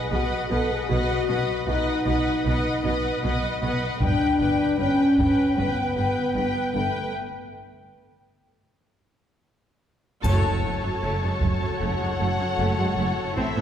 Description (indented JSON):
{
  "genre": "cinematic, epic orchestral film score",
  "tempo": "77 BPM",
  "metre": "4/4",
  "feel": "straight",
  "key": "F# minor from 10.2 s",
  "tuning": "A4 = 440 Hz",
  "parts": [
    { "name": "rich studio violin section", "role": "melody", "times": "0.0-13.6 s", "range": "E5 to A5", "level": "-33 LUFS", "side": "left 3 dB", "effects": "none" },
    { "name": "clear symphonic violin section", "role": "second line", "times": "0.0-13.6 s", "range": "A4 to G5", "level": "-30 LUFS", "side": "left 3 dB", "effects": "none" },
    { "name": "clear symphonic viola section", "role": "accompaniment", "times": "0.0-13.6 s", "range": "F#3 to B4", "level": "-31 LUFS", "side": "right 1 dB", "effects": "none" },
    { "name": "dark French horn section", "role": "sustained chords", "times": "0.0-7.1 s", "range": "A3 to A4", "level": "-24 LUFS", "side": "left 1 dB", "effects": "none" },
    { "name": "rich symphonic cello section", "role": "bass", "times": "0.1-13.6 s", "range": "F#2 to B2", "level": "-29 LUFS", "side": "right 1 dB", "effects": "none" },
    { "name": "rich symphonic double bass section", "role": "bass", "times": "0.1-13.4 s", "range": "F#1 to B1", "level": "-29 LUFS", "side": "right 2 dB", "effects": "none" },
    { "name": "taiko ensemble", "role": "drums", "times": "4.0-5.5, 10.2-11.8 s", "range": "none", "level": "-30 LUFS", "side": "equal", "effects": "none" },
    { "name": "triangle", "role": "percussion", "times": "10.2-11.8 s", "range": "none", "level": "-48 LUFS", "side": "left 2 dB", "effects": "none" }
  ],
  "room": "wet scoring stage reverb, RT60 1.9 s",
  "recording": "heard from further back in the room",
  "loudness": "-21 LUFS",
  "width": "side -9 dB against mid",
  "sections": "0.0-10.2 A section; 10.2-13.6 B section",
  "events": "break 7.1-10.2; band accent 10.2-11.0",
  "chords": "0.0 B; 4.0 G; 7.1 N.C.; 10.2 F#m"
}